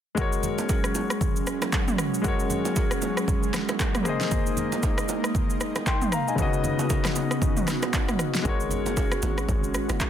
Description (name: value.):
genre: amapiano.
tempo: 116 BPM.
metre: 4/4.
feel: swing 58% on 16ths.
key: G# minor.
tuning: A4 = 439 Hz.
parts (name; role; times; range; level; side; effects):
warm grand piano; accompaniment; 0.1-10.1 s; C#3 to B#5; -29 LUFS; left 5 dB; none.
airy breathy pad; sustained chords; 0.2-10.1 s; C#3 to F#4; -30 LUFS; right 2 dB; chorus.
deep house drum kit; drums; 0.2-10.1 s; handclaps, kick drum, rim click, shaker, snare drum, toms; -26 LUFS; equal; overdrive.
congas and bongos; percussion; 0.2-10.1 s; none; -34 LUFS; right 6 dB; none.
hollow log drum bass; bass; 8.5-10.0 s; F#1 to G#1; -30 LUFS; equal; none.
room: little or no reverb.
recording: dense, heavily limited modern master.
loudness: -23 LUFS.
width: side -10 dB against mid.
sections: 0.2-10.1 A section.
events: none.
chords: 0.2 G#9sus4; 4.1 A#9sus4; 6.4 C#9sus4; 8.5 G#9sus4.